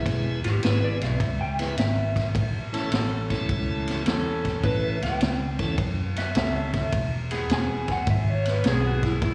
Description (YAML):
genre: electric blues shuffle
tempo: 105 BPM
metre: 4/4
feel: swing 67% on 8ths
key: E major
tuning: A4 = 441 Hz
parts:
  - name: tonewheel organ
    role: accompaniment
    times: 0.0-5.8 s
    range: E3 to B4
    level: -34 LUFS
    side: equal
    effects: slow rotary speaker, slapback echo
  - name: vintage muted fingered electric bass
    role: bass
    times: 0.0-9.3 s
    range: E1 to F#2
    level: -29 LUFS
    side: equal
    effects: none
  - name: vintage drum kit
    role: drums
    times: 0.1-9.3 s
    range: kick drum, ride cymbal, snare drum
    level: -30 LUFS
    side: equal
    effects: slapback echo
  - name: electric guitar through a small old amp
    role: second line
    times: 0.4-9.3 s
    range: E4 to G#5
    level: -33 LUFS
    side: equal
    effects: spring reverb, slapback echo
  - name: clear saxophone section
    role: stabs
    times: 2.7-9.3 s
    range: B3 to B4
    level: -34 LUFS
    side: equal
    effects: slapback echo
room: light reverb, small room ambience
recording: live gig heard through the venue's PA, recital hall reverb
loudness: -25 LUFS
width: mono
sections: 0.0-9.3 A section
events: clean electric guitar solo 0.0-9.3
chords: 0.0 E; 2.3 A; 6.9 E